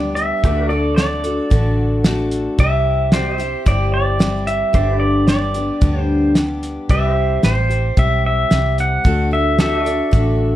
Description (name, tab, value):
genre	honky-tonk and classic country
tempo	111 BPM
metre	4/4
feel	straight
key	unclear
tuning	A4 = 440 Hz
part	pedal steel guitar	melody	0.0-10.6 s	C5 to F#5	-20 LUFS	right 1 dB	plate reverb
part	picked steel-string acoustic guitar	accompaniment	0.0-10.6 s	G2 to A4	-21 LUFS	left 2 dB	none
part	pedal steel guitar	sustained chords	0.0-10.6 s	F#4 to E5	-30 LUFS	equal	none
part	vintage muted fingered electric bass	bass	0.0-10.6 s	G1 to D2	-20 LUFS	equal	none
part	cloth-damped thuddy drum kit	drums	0.2-10.3 s	hi-hat, kick drum, snare drum	-16 LUFS	equal	none
room	moderate studio ambience, RT60 0.5 s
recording	dark, warm production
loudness	-14 LUFS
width	side -13 dB against mid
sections	0.0-10.6 A section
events	none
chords	0.4 D; 2.6 C; 4.7 G; 6.9 C; 9.1 D